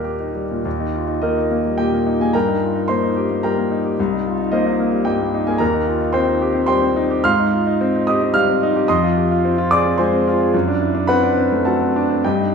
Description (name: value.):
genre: classical, virtuoso piano study.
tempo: 109 BPM.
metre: 3/4.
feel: uneven beats, rubato.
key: Eb major.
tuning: A4 = 440 Hz.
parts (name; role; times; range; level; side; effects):
clear grand piano; solo; 0.0-12.5 s; C2 to F6; -16 LUFS; equal; none.
room: moderate recital hall reverb, RT60 1.5 s.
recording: studio ambience.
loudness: -16 LUFS.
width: side -6 dB against mid.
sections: 0.7-12.5 A section.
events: none.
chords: 0.0 Eb; 2.3 Eb/G; 4.0 Cm7; 5.6 Cm/Eb; 7.2 Abmaj7; 8.9 Fm7; 10.5 D7/F#.